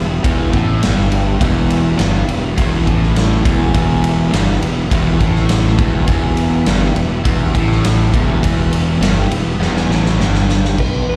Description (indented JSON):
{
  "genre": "classic rock",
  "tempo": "103 BPM",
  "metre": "4/4",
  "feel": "straight",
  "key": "E minor",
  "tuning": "A4 = 440 Hz",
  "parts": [
    { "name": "tonewheel organ", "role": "sustained chords", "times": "0.0-10.8 s", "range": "B3 to E5", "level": "-31 LUFS", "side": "equal", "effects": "none" },
    { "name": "overdriven electric guitar", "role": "riff", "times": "0.0-10.8 s", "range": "E2 to A2", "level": "-24 LUFS", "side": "equal", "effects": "slapback echo" },
    { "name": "overdriven semi-hollow guitar", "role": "riff", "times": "0.0-10.8 s", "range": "E2 to A2", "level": "-23 LUFS", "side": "equal", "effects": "slapback echo" },
    { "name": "fuzz fingered electric bass", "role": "bass", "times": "0.0-11.2 s", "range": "E1 to E2", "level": "-19 LUFS", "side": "equal", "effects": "overdrive" },
    { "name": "huge arena drum kit", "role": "drums", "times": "0.2-10.9 s", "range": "crash cymbal, kick drum, ride cymbal, snare drum", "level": "-20 LUFS", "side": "equal", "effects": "none" },
    { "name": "clean lap steel guitar", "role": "melody", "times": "10.8-11.2 s", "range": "B4", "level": "-24 LUFS", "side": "equal", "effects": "slapback echo" }
  ],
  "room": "light reverb, small room ambience",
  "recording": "live gig heard through the venue's PA, recital hall reverb",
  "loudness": "-15 LUFS",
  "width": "mono",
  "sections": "0.0-10.8 A section",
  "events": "drum fill 9.6-10.8",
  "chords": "0.0 Em"
}